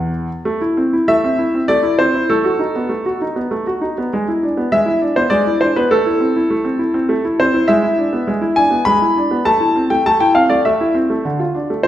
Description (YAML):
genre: classical-period piano sonatina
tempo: 100 BPM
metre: 3/4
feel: rubato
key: A minor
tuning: A4 = 440 Hz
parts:
  - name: clear baby grand piano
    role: solo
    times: 0.0-11.9 s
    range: E2 to B5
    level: -14 LUFS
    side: equal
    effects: none
room: wet recital hall reverb, RT60 1.6 s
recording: heard from further back in the room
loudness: -13 LUFS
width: side -12 dB against mid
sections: 0.5-11.9 A section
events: none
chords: 0.5 Am; 2.3 B7/A; 4.1 E7/G#; 5.9 Am; 7.7 E7/G#; 9.5 Am; 11.2 Dm